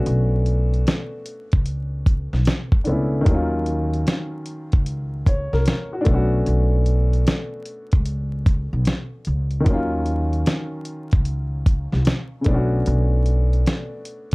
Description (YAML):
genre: lo-fi hip hop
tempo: 75 BPM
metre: 4/4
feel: swing 65% on 16ths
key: unclear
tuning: A4 = 440 Hz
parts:
  - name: warm upright piano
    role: accompaniment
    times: 0.0-14.3 s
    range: C#3 to Db5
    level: -25 LUFS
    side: left 1 dB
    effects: none
  - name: upright bass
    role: bass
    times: 0.0-13.6 s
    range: B1 to Eb2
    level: -21 LUFS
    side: equal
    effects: none
  - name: dusty soul sampler-style drum kit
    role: drums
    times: 0.1-14.3 s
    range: hi-hat, kick drum, snare drum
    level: -18 LUFS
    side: equal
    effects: none
room: light reverb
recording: dark, warm production, vinyl crackle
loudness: -18 LUFS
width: side -27 dB against mid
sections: 0.0-14.3 A section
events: none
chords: 0.0 Bm9; 3.3 Ebm9; 6.1 Bm9; 9.7 Ebm9; 12.5 Bm9